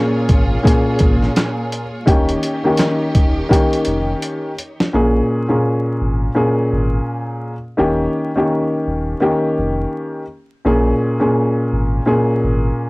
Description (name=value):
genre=hip hop, boom-bap hip-hop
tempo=84 BPM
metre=4/4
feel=swing 61% on 16ths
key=Bb dorian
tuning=A4 = 443 Hz
part: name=dark upright piano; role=accompaniment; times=0.0-12.9 s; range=Bb2 to Ab4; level=-16 LUFS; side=equal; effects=cassette tape
part: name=warm studio string section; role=sustained chords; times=0.0-4.9 s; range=Eb3 to Db5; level=-26 LUFS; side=right 1 dB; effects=cassette tape
part: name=sub bass with octave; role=bass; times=0.3-12.7 s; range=Eb1 to Bb1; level=-20 LUFS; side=equal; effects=none
part: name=dusty soul sampler-style drum kit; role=drums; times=0.3-4.9 s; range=handclaps, hi-hat, kick drum, snare drum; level=-16 LUFS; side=equal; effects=overdrive, cassette tape
room=little or no reverb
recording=home recording on cassette, vinyl crackle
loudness=-14 LUFS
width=side -24 dB against mid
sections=0.0-4.9 A section; 4.9-12.9 B section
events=drum fill 3.5-4.9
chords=0.0 Bbm7; 2.1 Eb7; 4.9 Bbm7; 7.8 Eb7; 10.6 Bbm7